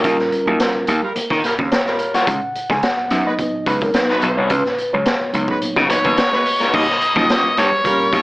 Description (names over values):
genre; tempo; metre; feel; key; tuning
funk; 108 BPM; 4/4; straight; unclear; A4 = 440 Hz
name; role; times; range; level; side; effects
clear horn section; second line; 0.0-8.1 s; G3 to Eb5; -23 LUFS; right 1 dB; none
crunchy overdriven guitar; accompaniment; 0.0-6.8 s; Eb4 to Db5; -23 LUFS; left 3 dB; none
clean electric guitar; riff; 0.0-8.0 s; Gb3 to Db4; -30 LUFS; right 2 dB; none
mellow tine electric piano; stabs; 0.0-8.2 s; Gb3 to Ab5; -21 LUFS; equal; fast stereo tremolo
gritty slap bass; bass; 0.0-8.2 s; Cb2 to Eb3; -19 LUFS; equal; overdrive
raw garage drum kit; drums; 0.0-8.2 s; crash cymbal, hi-hat, kick drum, snare drum; -21 LUFS; equal; none
octave-fuzz lead guitar; melody; 5.9-8.2 s; Db5 to Eb5; -17 LUFS; equal; distortion
room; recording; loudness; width
light reverb; AM radio sound; -15 LUFS; side -21 dB against mid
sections
0.0-6.7 A section; 6.7-8.2 B section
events
tine electric piano solo 0.0-6.7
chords
0.0 Eb9; 2.3 Db9sus4; 6.7 Eb9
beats
| 0.04 0.60 1.16 1.72 | 2.28 2.83 3.39 3.95 | 4.51 5.07 5.62 6.18 | 6.74 7.29 7.85